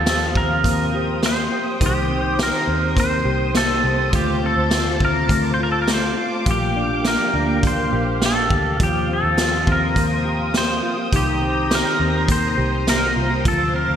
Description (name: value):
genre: dream pop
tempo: 103 BPM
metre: 4/4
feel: straight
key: Eb lydian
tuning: A4 = 440 Hz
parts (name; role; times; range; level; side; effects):
- pedal steel guitar; melody; 0.0-14.0 s; G4 to C5; -22 LUFS; equal; analog chorus, digital delay
- ensemble organ-string; sustained chords; 0.0-14.0 s; Bb3 to Eb6; -26 LUFS; right 1 dB; ensemble chorus
- mellow electric guitar; arpeggios; 0.0-14.0 s; Eb3 to G4; -24 LUFS; left 2 dB; wide subtle chorus, digital delay
- vintage muted picked electric bass; bass; 0.0-14.0 s; Bb1 to Eb2; -24 LUFS; equal; none
- raw garage drum kit; drums; 0.1-13.6 s; hi-hat, kick drum, snare drum; -23 LUFS; equal; gated reverb
room: moderate plate reverb, RT60 2.4 s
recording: bright 1980s-style digital production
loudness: -17 LUFS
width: side -9 dB against mid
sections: 0.0-14.0 A section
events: none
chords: 0.0 Eb69; 1.8 Cm7; 4.1 Dm7; 6.5 Bb6; 8.8 Eb69; 11.1 Cm7; 13.5 Dm7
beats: 0.06 0.64 1.22 | 1.81 2.39 2.97 3.55 | 4.14 4.72 5.30 5.88 | 6.47 7.05 7.63 8.21 | 8.80 9.38 9.96 10.54 | 11.13 11.71 12.29 12.87 | 13.46